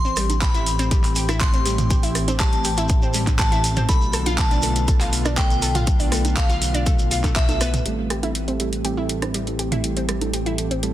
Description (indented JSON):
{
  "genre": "progressive house",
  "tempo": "121 BPM",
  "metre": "4/4",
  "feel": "straight",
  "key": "A minor",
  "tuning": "A4 = 440 Hz",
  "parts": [
    { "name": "glassy synth bell", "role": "melody", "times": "0.0-7.8 s", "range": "E5 to C6", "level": "-28 LUFS", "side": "left 2 dB", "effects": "chorus, sidechain pumping, dub echo" },
    { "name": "airy breathy pad", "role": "sustained chords", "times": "0.0-10.9 s", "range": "D3 to G4", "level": "-29 LUFS", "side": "equal", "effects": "chorus, sidechain pumping" },
    { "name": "analog pluck", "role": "arpeggios", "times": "0.0-10.9 s", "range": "G3 to A4", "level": "-28 LUFS", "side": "equal", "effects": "chorus, sidechain pumping, dub echo" },
    { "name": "fat analog bass", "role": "bass", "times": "0.0-10.9 s", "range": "A1 to B1", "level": "-25 LUFS", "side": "equal", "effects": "sidechain pumping" },
    { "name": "shekere", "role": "percussion", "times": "0.0-7.8 s", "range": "none", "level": "-32 LUFS", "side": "right 1 dB", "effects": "none" },
    { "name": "pop drum kit", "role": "drums", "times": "0.2-10.9 s", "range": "handclaps, hi-hat", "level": "-27 LUFS", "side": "right 1 dB", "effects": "none" },
    { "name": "punchy analog drum machine", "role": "percussion", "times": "0.2-10.3 s", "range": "congas, rim click, toms", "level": "-28 LUFS", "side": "right 3 dB", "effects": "sidechain pumping on perc, soft clipping on snare, sidechain pumping on snare, sidechain pumping on toms" },
    { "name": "electronic kick drum", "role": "drums", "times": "0.4-7.5 s", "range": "none", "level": "-20 LUFS", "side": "equal", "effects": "none" },
    { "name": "chorused polysynth", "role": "stabs", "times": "7.9-10.9 s", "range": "G3 to B4", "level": "-28 LUFS", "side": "right 5 dB", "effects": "sidechain pumping, dub echo" }
  ],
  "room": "little or no reverb",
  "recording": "dense, heavily limited modern master",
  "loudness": "-18 LUFS",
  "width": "side -13 dB against mid",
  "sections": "0.0-7.9 A section; 7.9-10.9 B section",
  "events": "filter sweep on synth pluck 7.9-10.9; filter sweep on analog polysynth 7.9-10.9; filter sweep on analog synth pad 7.9-10.9",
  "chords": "0.0 Am7; 3.9 Bm7b5; 7.9 Am7",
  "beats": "0.42 0.91 1.41 | 1.91 2.40 2.90 3.39 | 3.89 4.38 4.88 5.38 | 5.87 6.37 6.86 7.36 | 7.86 8.35 8.85 9.34 | 9.84 10.34 10.83"
}